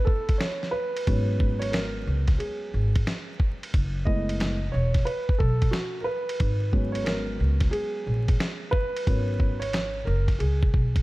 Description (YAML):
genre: hip hop, jazz-hop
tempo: 90 BPM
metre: 4/4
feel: swing 64% on 16ths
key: G# phrygian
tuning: A4 = 439 Hz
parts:
  - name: dark grand piano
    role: accompaniment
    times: 0.0-11.0 s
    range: F#3 to D#5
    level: -30 LUFS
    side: right 1 dB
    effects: none
  - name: dusty soul sampler-style drum kit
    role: drums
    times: 0.1-11.0 s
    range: hi-hat, kick drum, ride cymbal, snare drum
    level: -26 LUFS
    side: equal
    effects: none
  - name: upright bass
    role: bass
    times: 1.1-11.0 s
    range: E1 to C#2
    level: -26 LUFS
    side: equal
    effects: none
room: small room ambience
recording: dark, warm production, vinyl crackle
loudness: -23 LUFS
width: side -19 dB against mid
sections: 0.0-11.0 A section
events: break 0.0-1.1; grand piano solo 0.0-11.0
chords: 0.0 Amaj9; 1.1 G#m11; 3.7 F#m11; 6.4 G#m11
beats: 0.41 | 1.07 1.74 2.41 3.07 | 3.74 4.41 5.07 5.74 | 6.41 7.07 7.74 8.41 | 9.07 9.74 10.41